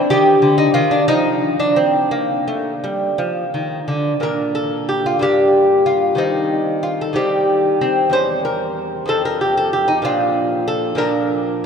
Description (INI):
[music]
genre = classical, baroque-style dance for lute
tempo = 57-64 BPM (dotted quarters)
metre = 6/8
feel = rubato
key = Bb major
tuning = A4 = 440 Hz
[part]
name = lute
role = solo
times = 0.0-11.7 s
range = E2 to C5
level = -15 LUFS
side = equal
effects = none
[sound]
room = wet cathedral reverb, RT60 5.0 s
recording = in a vast, echoing space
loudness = -15 LUFS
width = side -6 dB against mid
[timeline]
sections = 0.0-4.2 A section; 4.2-11.7 B section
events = none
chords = 0.1 Ebmaj9; 1.1 N.C.; 4.2 Bb; 5.2 Gm; 6.2 Cm/Eb; 8.1 Edim7; 9.1 F5; 10.0 Bb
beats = | 0.10 1.10 | 2.12 3.18 | 4.22 5.21 | 6.18 7.16 | 8.13 9.09 | 10.05 10.99